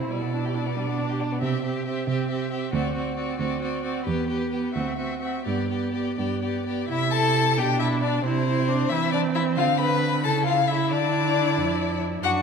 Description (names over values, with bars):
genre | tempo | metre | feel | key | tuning
quick classical-period movement for string quartet | 90 BPM (dotted quarters) | 6/8 | rubato | G major, C major from 6.9 s | A4 = 440 Hz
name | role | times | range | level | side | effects
rich violin | melody | 0.0-12.3 s | B4 to B5 | -28 LUFS | left 9 dB | none
rich violin | second line | 0.0-12.4 s | G3 to B4 | -29 LUFS | left 2 dB | none
rich viola | accompaniment | 0.0-12.4 s | B3 to E4 | -28 LUFS | right 4 dB | none
rich cello | bass | 0.0-12.4 s | D2 to E3 | -27 LUFS | right 4 dB | none
room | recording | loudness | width
moderate scoring stage reverb, RT60 1.7 s | none | -22 LUFS | side -6 dB against mid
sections
0.0-6.9 A section; 6.9-12.4 B section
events
none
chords
0.1 G/B; 1.4 C; 2.7 D7; 4.1 Em; 4.8 D9; 5.5 G; 6.9 C; 7.6 G6/B; 8.2 C; 9.6 Dm6; 10.2 Fmaj7#5/C#; 10.9 Dm